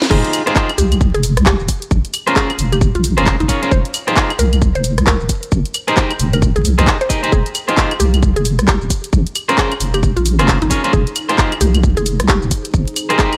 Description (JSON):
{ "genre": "UK garage, two-step garage", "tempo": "133 BPM", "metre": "4/4", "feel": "swing 61% on 16ths", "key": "F minor", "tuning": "A4 = 440 Hz", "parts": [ { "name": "clean electric guitar", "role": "stabs", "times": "0.0-13.3 s", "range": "Db4 to Eb5", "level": "-20 LUFS", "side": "equal", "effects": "spring reverb" }, { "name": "garage drum kit", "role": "drums", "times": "0.0-13.4 s", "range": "claves, crash cymbal, handclaps, hi-hat, rim click, shaker, snare drum", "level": "-21 LUFS", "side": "equal", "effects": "studio reverb" }, { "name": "mallet-like synth pluck", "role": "melody", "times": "0.1-13.4 s", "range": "Eb4 to C5", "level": "-25 LUFS", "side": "equal", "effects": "chorus, tape echo" }, { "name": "deep soft wobble bass", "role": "bass", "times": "0.1-12.9 s", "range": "Eb1 to C2", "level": "-17 LUFS", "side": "equal", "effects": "chorus" }, { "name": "electronic kick drum", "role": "drums", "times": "0.1-13.3 s", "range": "none", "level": "-19 LUFS", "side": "equal", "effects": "studio reverb" }, { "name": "granular cloud pad", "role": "texture", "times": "9.9-13.4 s", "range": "Eb4 to C5", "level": "-33 LUFS", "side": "equal", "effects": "none" } ], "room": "digital ambience", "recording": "vinyl crackle", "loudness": "-15 LUFS", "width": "mono", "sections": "0.1-13.4 A section", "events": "drop 0.1-13.4", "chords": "0.1 Fm9; 1.9 Bbm9; 3.7 Fm9; 5.3 Abmaj9; 7.3 Fm9; 9.1 Bbm9; 10.9 Fm9; 12.5 Abmaj9", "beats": "| 0.11 0.56 1.01 1.46 | 1.91 2.36 2.81 3.26 | 3.71 4.17 4.62 5.07 | 5.52 5.97 6.42 6.87 | 7.32 7.78 8.23 8.68 | 9.13 9.58 10.03 10.48 | 10.93 11.38 11.84 12.29 | 12.74 13.19" }